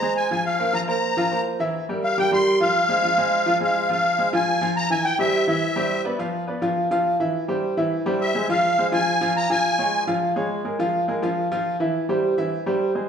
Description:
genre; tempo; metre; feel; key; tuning
latin; 209 BPM; 4/4; straight; F harmonic minor; A4 = 437 Hz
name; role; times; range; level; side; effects
musette accordion; melody; 0.0-6.0, 8.2-10.0 s; E5 to C6; -21 LUFS; left 1 dB; none
bright upright piano; accompaniment; 0.0-13.1 s; E3 to F5; -22 LUFS; equal; none
room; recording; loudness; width
wet large studio reverb, RT60 1.3 s; heard from further back in the room; -19 LUFS; side -7 dB against mid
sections
0.0-3.9 A section; 3.9-13.1 B section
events
none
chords
0.4 Bbsus2; 1.6 C7; 2.7 Fm; 5.0 C; 6.2 Dm69 (rootless); 7.3 C; 8.5 Fm; 9.6 Db; 10.8 N.C.; 11.9 C

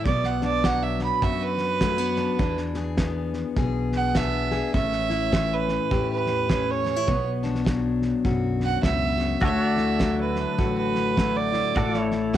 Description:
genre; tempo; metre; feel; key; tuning
honky-tonk and classic country; 103 BPM; 4/4; swing 61% on 8ths; unclear; A4 = 440 Hz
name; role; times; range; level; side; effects
clear fiddle; second line; 0.0-12.4 s; B4 to B5; -26 LUFS; right 7 dB; cassette tape
picked steel-string acoustic guitar; accompaniment; 0.0-12.4 s; F#2 to G#4; -26 LUFS; left 5 dB; cassette tape
upright bass; bass; 0.1-12.4 s; A1 to F#2; -30 LUFS; right 1 dB; none
cloth-damped thuddy drum kit; drums; 0.1-12.4 s; hi-hat, kick drum, snare drum; -27 LUFS; right 1 dB; none
pedal steel guitar; sustained chords; 9.4-12.4 s; E4 to D5; -29 LUFS; equal; wide subtle chorus, cassette tape
room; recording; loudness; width
light reverb, small room ambience; home recording on cassette; -22 LUFS; side -11 dB against mid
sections
0.0-12.4 A section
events
fiddle solo 0.0-12.4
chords
0.1 Bm; 2.4 E7; 4.7 A7; 7.1 Bm; 9.4 Dadd9; 11.8 A

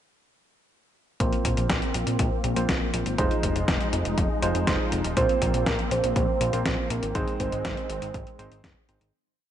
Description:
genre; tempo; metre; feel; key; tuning
italo disco; 121 BPM; 4/4; straight; unclear; A4 = 439 Hz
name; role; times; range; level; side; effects
warm analog pad; sustained chords; 1.2-9.1 s; Eb3 to Eb4; -31 LUFS; equal; chorus
warm electric grand piano; stabs; 1.2-9.1 s; Ab3 to C5; -32 LUFS; right 2 dB; low-pass filter, tape echo
fat analog bass; bass; 1.2-9.1 s; Eb1 to Bb1; -29 LUFS; left 1 dB; none
clean 12-bit digital drum machine; drums; 1.2-9.1 s; hi-hat, snare drum; -30 LUFS; left 1 dB; gated reverb
electronic kick drum; drums; 1.2-8.7 s; none; -29 LUFS; equal; none
soft octave-layered synth lead; melody; 5.2-8.4 s; Ab4 to C5; -28 LUFS; right 3 dB; chorus, tape echo
room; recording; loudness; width
light reverb, digital ambience; nothing above 10.9 kHz; -23 LUFS; side -10 dB against mid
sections
1.2-9.1 verse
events
filter sweep on electric grand piano 1.2-9.1; fade-out 6.5-9.1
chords
1.2 Bbsus2; 3.2 Fm7; 5.2 Bbsus2; 7.2 Ab

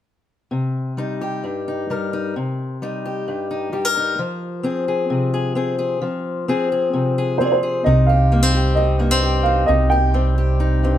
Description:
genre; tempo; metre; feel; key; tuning
folk; 131 BPM; 4/4; straight; C minor; A4 = 440 Hz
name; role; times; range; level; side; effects
fingerpicked acoustic archtop guitar; accompaniment; 0.5-11.0 s; G2 to Bb4; -20 LUFS; left 2 dB; none
dark upright piano; melody; 7.4-11.0 s; C5 to G5; -20 LUFS; right 2 dB; none
fingered electric bass; bass; 7.9-11.0 s; C2; -17 LUFS; right 1 dB; none
room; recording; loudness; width
moderate stone room reverb, RT60 0.9 s; band playing live in one room; -17 LUFS; side -11 dB against mid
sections
0.5-7.9 A section; 7.9-11.0 B section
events
none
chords
0.5 Cm; 4.2 Fm; 7.9 Cm

